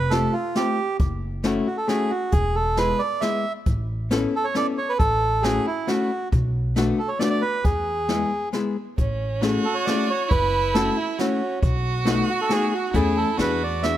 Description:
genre	musette waltz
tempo	136 BPM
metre	3/4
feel	straight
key	A major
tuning	A4 = 438 Hz
part	bandoneon	melody	0.0-14.0 s	E4 to E5	-24 LUFS	right 2 dB	none
part	upright bass	bass	0.0-14.0 s	E1 to E2	-26 LUFS	equal	none
part	archtop guitar, miked and amplified	accompaniment	0.1-14.0 s	G#3 to A4	-25 LUFS	left 4 dB	none
part	jazz brush drum kit	drums	0.1-13.9 s	hi-hat, kick drum, snare drum	-26 LUFS	equal	none
part	clear violin	second line	9.0-14.0 s	C#4 to F#4	-28 LUFS	right 4 dB	none
room	light reverb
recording	close, detailed microphones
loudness	-20 LUFS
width	side -12 dB against mid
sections	0.0-14.0 A section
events	none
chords	0.0 Fadd9; 1.0 F#m7; 2.3 E; 3.7 Aadd9; 5.0 F#m7/A; 6.3 Bm7; 7.6 E; 9.0 Amaj7; 10.3 F#m7; 11.6 B7; 12.9 A/E; 13.4 E7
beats	0.12 0.56 | 1.00 1.44 1.89 | 2.33 2.77 3.22 | 3.66 4.11 4.55 | 4.99 5.43 5.88 | 6.32 6.76 7.20 | 7.64 8.08 8.53 | 8.97 9.42 9.86 | 10.30 10.74 11.18 | 11.62 12.06 12.50 | 12.94 13.38 13.83

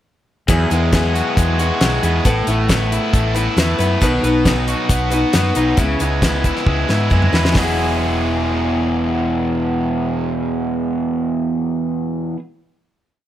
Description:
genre	folk rock and heartland rock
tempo	136 BPM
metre	4/4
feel	straight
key	E major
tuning	A4 = 440 Hz
part	picked steel-string acoustic guitar	accompaniment	0.5-12.4 s	B2 to B4	-22 LUFS	left 2 dB	none
part	raw garage guitar	riff	0.5-12.4 s	E2 to G#4	-19 LUFS	right 1 dB	overdrive
part	hollow-body short-scale fingered electric bass	bass	0.5-12.3 s	E1 to G#2	-21 LUFS	equal	none
part	damped 70s drum kit	drums	0.5-7.7 s	hi-hat, kick drum, snare drum, toms	-18 LUFS	equal	none
room	light reverb, small room ambience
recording	none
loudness	-15 LUFS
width	side -12 dB against mid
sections	0.5-7.6 verse; 7.6-11.1 final chord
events	drum fill 6.7-7.6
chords	0.5 Eadd9; 2.2 Asus2; 4.0 B; 5.8 C#m7; 7.6 Eadd9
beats	| 0.48 0.92 1.36 1.80 | 2.24 2.68 3.13 3.57 | 4.01 4.45 4.89 5.34 | 5.78 6.22 6.67 7.11 | 7.55 7.99 8.44 8.88 | 9.32 9.76 10.20 10.64

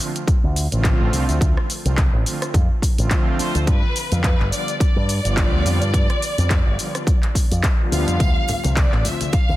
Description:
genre	nu-disco, nu disco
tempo	106 BPM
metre	4/4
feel	swing 56% on 16ths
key	D dorian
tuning	A4 = 440 Hz
part	warm analog pad	accompaniment	0.0-9.1 s	D3 to F4	-27 LUFS	equal	chorus
part	house drum kit	drums	0.0-9.5 s	handclaps, hi-hat, rim click, shaker	-26 LUFS	equal	overdrive
part	picked electric bass with an envelope filter	bass	0.3-9.6 s	G1 to G2	-20 LUFS	equal	none
part	electronic kick drum	drums	0.3-9.5 s	none	-18 LUFS	equal	overdrive
part	warm studio violin section	melody	3.4-9.6 s	B4 to F5	-26 LUFS	equal	dub echo
part	congas, tambourine and bongos	percussion	8.2-9.6 s	none	-29 LUFS	left 2 dB	none
room	little or no reverb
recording	dense, heavily limited modern master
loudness	-17 LUFS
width	side -16 dB against mid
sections	0.0-9.6 A section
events	none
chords	0.0 Dm7; 3.7 G7; 8.2 Dm7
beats	0.28 0.84 | 1.41 1.98 2.54 3.11 | 3.67 4.24 4.81 5.37 | 5.94 6.50 7.07 7.64 | 8.20 8.77 9.34

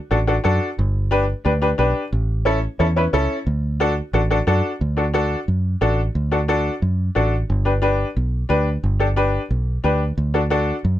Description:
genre	latin, cumbia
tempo	179 BPM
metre	4/4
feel	straight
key	D major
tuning	A4 = 440 Hz
part	bright upright piano	accompaniment	0.1-10.7 s	C#4 to B4	-20 LUFS	left 1 dB	none
part	fingered electric bass	bass	0.1-11.0 s	G1 to F#2	-20 LUFS	right 1 dB	none
room	little or no reverb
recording	close, detailed microphones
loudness	-18 LUFS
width	side -13 dB against mid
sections	0.0-4.8 A section; 4.8-11.0 B section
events	none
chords	0.0 D; 0.8 G; 2.1 A; 3.5 D; 7.5 G; 10.2 D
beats	0.11 0.45 | 0.78 1.12 1.45 1.79 | 2.12 2.46 2.79 3.13 | 3.47 3.80 4.14 4.47 | 4.81 5.14 5.48 5.81 | 6.15 6.49 6.82 7.16 | 7.49 7.83 8.16 8.50 | 8.83 9.17 9.50 9.84 | 10.17 10.51 10.85

